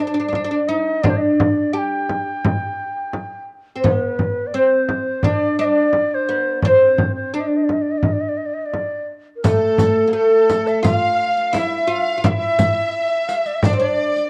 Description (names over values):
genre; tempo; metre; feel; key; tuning
Turkish makam ensemble; 86 BPM; 4/4; straight; D makam hicaz; A4 = 444 Hz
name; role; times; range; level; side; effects
oud; melody; 0.0-14.3 s; A3 to G4; -21 LUFS; equal; cassette tape
breathy ney; second line; 0.0-14.3 s; A4 to A5; -24 LUFS; equal; cassette tape
frame drum; percussion; 0.3-13.8 s; none; -22 LUFS; equal; none
riq; percussion; 9.4-14.3 s; none; -31 LUFS; equal; none
bright studio violin section; second line; 9.5-14.3 s; A4 to F5; -28 LUFS; equal; cassette tape
room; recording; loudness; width
light reverb, small room ambience; home recording on cassette; -18 LUFS; mono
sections
0.0-9.4 A section; 9.4-14.3 B section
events
none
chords
none